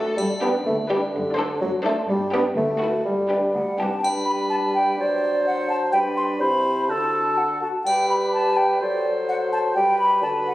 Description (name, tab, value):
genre	cinematic, playful, whimsical film cue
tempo	125 BPM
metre	2/4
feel	straight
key	G major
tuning	A4 = 440 Hz
part	rich studio violin section	melody	0.0-4.0 s	A4 to C5	-32 LUFS	left 1 dB	none
part	rich studio violin section	second line	0.0-4.0 s	F#4 to A4	-31 LUFS	left 2 dB	none
part	mellow bassoon	accompaniment	0.0-10.5 s	C3 to B3	-25 LUFS	equal	none
part	warm studio viola section	accompaniment	0.0-4.0 s	D4 to E4	-31 LUFS	equal	none
part	rich studio cello section	bass	0.0-3.9 s	C2 to G2	-31 LUFS	equal	none
part	triangle	percussion	0.2-1.1, 4.0-5.0, 7.9-8.8 s	none	-37 LUFS	left 2 dB	none
part	mellow hollow silver concert flute	second line	3.5-10.5 s	D5 to C6	-22 LUFS	equal	none
part	mellow clarinet	second line	4.0-10.5 s	D4 to A4	-30 LUFS	left 1 dB	none
part	warm oboe	second line	4.0-10.5 s	A4 to C5	-26 LUFS	right 1 dB	none
room	wet scoring stage reverb, RT60 1.9 s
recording	recorded on a phone in the room, studio reverb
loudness	-19 LUFS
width	side -16 dB against mid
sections	0.0-4.0 A section; 4.0-10.5 A section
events	none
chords	0.2 G; 1.1 D7/F#; 2.1 G; 2.6 D69; 3.1 G; 5.0 D7/F#; 5.9 G; 6.4 C; 6.9 D; 7.9 G; 8.8 D7/F#; 9.8 G